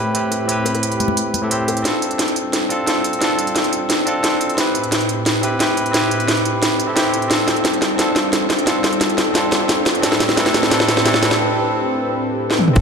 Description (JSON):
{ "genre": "liquid drum and bass", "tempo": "176 BPM", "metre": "4/4", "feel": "straight", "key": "A minor", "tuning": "A4 = 440 Hz", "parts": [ { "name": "barky tine electric piano", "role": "accompaniment", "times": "0.0-12.8 s", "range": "A2 to C5", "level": "-20 LUFS", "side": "equal", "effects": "ping-pong delay" }, { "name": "warm analog pad", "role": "sustained chords", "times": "0.0-12.8 s", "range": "A2 to B5", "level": "-25 LUFS", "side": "right 1 dB", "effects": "chorus, sidechain pumping" }, { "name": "garage drum kit", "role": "drums", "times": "0.1-12.8 s", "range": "crash cymbal, hi-hat, snare drum, toms", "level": "-17 LUFS", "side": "equal", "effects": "none" }, { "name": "bongos and congas", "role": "percussion", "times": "0.3-1.8, 12.8 s", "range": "none", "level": "-26 LUFS", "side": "left 5 dB", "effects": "none" }, { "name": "sub bass with octave", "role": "bass", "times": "12.8 s", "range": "G1", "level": "-15 LUFS", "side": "equal", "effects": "none" }, { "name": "electronic kick drum", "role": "drums", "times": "12.8 s", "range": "none", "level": "-12 LUFS", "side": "equal", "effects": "none" } ], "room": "moderate huge ambient reverb, RT60 4.1 s", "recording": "none", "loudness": "-15 LUFS", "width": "side -5 dB against mid", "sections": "0.0-1.9 A section; 1.9-12.8 B section", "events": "build-up 1.9-12.8; drum fill 1.9-11.4, 12.5; break 11.4-12.8", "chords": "0.0 Am7; 1.9 G9sus4; 4.6 Am7; 7.3 G9sus4; 10.0 Am7" }